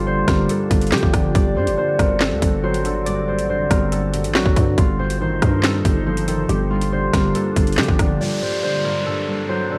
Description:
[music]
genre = hip hop, drill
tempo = 140 BPM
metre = 4/4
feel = half-time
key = unclear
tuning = A4 = 440 Hz
[part]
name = concert harp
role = melody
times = 0.0-9.8 s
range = F4 to D5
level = -25 LUFS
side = equal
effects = delay
[part]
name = felt-muted upright piano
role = accompaniment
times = 0.0-9.8 s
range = G2 to F#3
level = -27 LUFS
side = equal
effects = none
[part]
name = glassy FM pad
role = sustained chords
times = 0.0-9.8 s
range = G2 to C5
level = -30 LUFS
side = equal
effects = ensemble chorus, built-in reverb
[part]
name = growling 808-style bass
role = bass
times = 0.0-8.2 s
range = G1 to D3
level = -25 LUFS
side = equal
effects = none
[part]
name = drill drum kit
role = drums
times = 0.3-8.1 s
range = handclaps, hi-hat, kick drum, rim click, snare drum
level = -21 LUFS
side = equal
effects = overdrive
[part]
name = downlifter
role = sound effects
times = 8.2-9.8 s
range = none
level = -30 LUFS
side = equal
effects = none
[sound]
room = moderate recital hall reverb, RT60 1.4 s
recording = none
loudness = -19 LUFS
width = mono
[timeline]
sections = 0.0-8.2 A section; 8.2-9.8 B section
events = none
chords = 0.0 Gm7; 1.4 D7/G; 4.8 F7/G; 6.5 Gm7; 8.2 D7/G

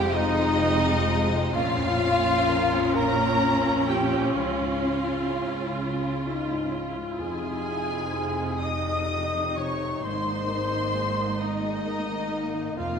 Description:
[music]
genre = cinematic, emotional film score for orchestra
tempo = 43 BPM (dotted quarters)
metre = 6/8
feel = rubato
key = unclear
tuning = A4 = 437 Hz
[part]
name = warm symphonic violin section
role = melody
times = 0.0-13.0 s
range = Eb5 to Eb6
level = -31 LUFS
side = left 3 dB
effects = none
[part]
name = dark clarinet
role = second line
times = 0.0-13.0 s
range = Eb4 to Eb5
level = -34 LUFS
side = left 4 dB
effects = none
[part]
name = mellow cor anglais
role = second line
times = 0.0-13.0 s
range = Eb4 to Eb5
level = -35 LUFS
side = right 2 dB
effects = none
[part]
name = mellow large flute ensemble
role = second line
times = 0.0-13.0 s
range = Eb5 to Eb6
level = -34 LUFS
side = right 1 dB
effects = none
[part]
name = warm symphonic violin section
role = second line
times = 0.0-13.0 s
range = Eb4 to Eb5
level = -33 LUFS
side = left 2 dB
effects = none
[part]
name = warm grand piano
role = accompaniment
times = 0.0-13.0 s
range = Bb1 to F5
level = -34 LUFS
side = left 1 dB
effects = none
[part]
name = warm symphonic viola section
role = accompaniment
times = 0.0-13.0 s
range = C3 to F4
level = -31 LUFS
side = right 3 dB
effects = none
[part]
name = mellow French horn section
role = sustained chords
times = 0.0-13.0 s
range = C3 to F4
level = -31 LUFS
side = left 4 dB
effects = none
[part]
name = rich symphonic cello section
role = bass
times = 0.0-13.0 s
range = F2 to Db3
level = -33 LUFS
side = right 3 dB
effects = none
[part]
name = warm symphonic double bass section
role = bass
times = 0.0-13.0 s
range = F1 to Db2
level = -34 LUFS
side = right 4 dB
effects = none
[sound]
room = wet scoring stage reverb, RT60 1.6 s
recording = minimal, uncompressed stereo recording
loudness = -23 LUFS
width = side -6 dB against mid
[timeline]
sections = 0.0-13.0 A section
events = none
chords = 0.0 Fm7; 1.5 Bbm; 4.4 Db; 7.2 Fm7; 10.0 Abadd9

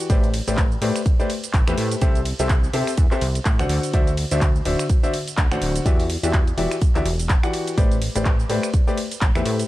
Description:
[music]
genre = piano house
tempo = 125 BPM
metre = 4/4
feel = swing 58% on 16ths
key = A dorian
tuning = A4 = 440 Hz
[part]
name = clear grand piano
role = riff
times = 0.0-9.7 s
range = D3 to F#5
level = -24 LUFS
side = left 2 dB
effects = sidechain pumping
[part]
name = house drum kit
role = drums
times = 0.0-9.7 s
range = finger snaps, handclaps, hi-hat, ride cymbal, shaker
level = -28 LUFS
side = right 1 dB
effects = none
[part]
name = plucky analog bass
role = bass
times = 0.1-9.6 s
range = D1 to C3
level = -24 LUFS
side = equal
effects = sidechain pumping
[part]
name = electronic kick drum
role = drums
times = 0.1-9.3 s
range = none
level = -18 LUFS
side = equal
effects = none
[sound]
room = little or no reverb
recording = dark, warm production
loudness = -18 LUFS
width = side -16 dB against mid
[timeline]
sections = 0.0-9.7 A section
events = none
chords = 0.1 Am11; 2.0 C6; 3.7 D9; 5.9 Em9; 7.8 Am11

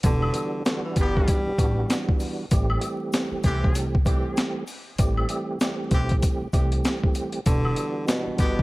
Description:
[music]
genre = hip hop, boom-bap hip-hop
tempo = 97 BPM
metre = 4/4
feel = swing 60% on 16ths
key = unclear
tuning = A4 = 440 Hz
[part]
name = upright bass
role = bass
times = 0.0-8.6 s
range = E1 to C2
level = -26 LUFS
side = equal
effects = none
[part]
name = boom bap sampler-style drum kit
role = drums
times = 0.0-8.6 s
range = hi-hat, kick drum, snare drum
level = -23 LUFS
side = equal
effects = overdrive, vintage 12-bit sampler grit
[part]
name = tube shaker and woodblock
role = percussion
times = 0.0-8.6 s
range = none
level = -36 LUFS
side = left 1 dB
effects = none
[part]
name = breathy tenor saxophone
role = melody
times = 0.1-2.0, 7.5-8.6 s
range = B2 to G3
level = -29 LUFS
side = equal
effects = none
[part]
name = percussive tonewheel organ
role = accompaniment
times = 0.1-8.6 s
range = E3 to G4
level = -29 LUFS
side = right 2 dB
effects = overdrive, chorus vibrato, fast rotary speaker, cassette tape
[part]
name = clear horn section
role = stabs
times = 1.0-8.6 s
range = D3 to G4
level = -34 LUFS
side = left 2 dB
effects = tape echo
[sound]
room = small room reverb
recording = vinyl crackle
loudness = -22 LUFS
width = side -21 dB against mid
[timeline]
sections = 0.0-8.6 A section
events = none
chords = 0.0 Em9; 2.5 Am7; 7.5 Em9

